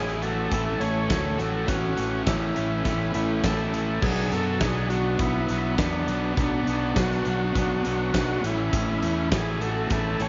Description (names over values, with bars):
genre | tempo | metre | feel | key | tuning
classic rock | 102 BPM | 4/4 | straight | unclear | A4 = 440 Hz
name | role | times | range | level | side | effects
overdriven tonewheel organ | melody | 0.0-10.3 s | D4 to C#5 | -32 LUFS | equal | slow rotary speaker
biting lead guitar | second line | 0.0-10.3 s | B3 to A4 | -36 LUFS | equal | overdrive
reed electric piano | accompaniment | 0.0-10.3 s | C#4 to D5 | -41 LUFS | equal | none
ensemble organ-string | sustained chords | 0.0-10.3 s | none | barely audible | none | none
crunchy overdriven guitar | riff | 0.0-10.3 s | A2 to F#4 | -35 LUFS | equal | none
overdriven electric guitar | riff | 0.0-10.3 s | A2 to B3 | -35 LUFS | equal | spring reverb
fuzz fingered electric bass | bass | 0.0-10.3 s | A1 to F#2 | -31 LUFS | equal | overdrive
big rock drum kit | drums | 0.1-10.3 s | crash cymbal, hi-hat, kick drum, snare drum | -31 LUFS | equal | none
room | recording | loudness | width
moderate echo chamber reverb, RT60 1.7 s, studio reverb | nothing above 7.5 kHz | -25 LUFS | mono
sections
0.0-10.3 A section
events
none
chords
0.0 A; 4.0 Bm; 8.4 A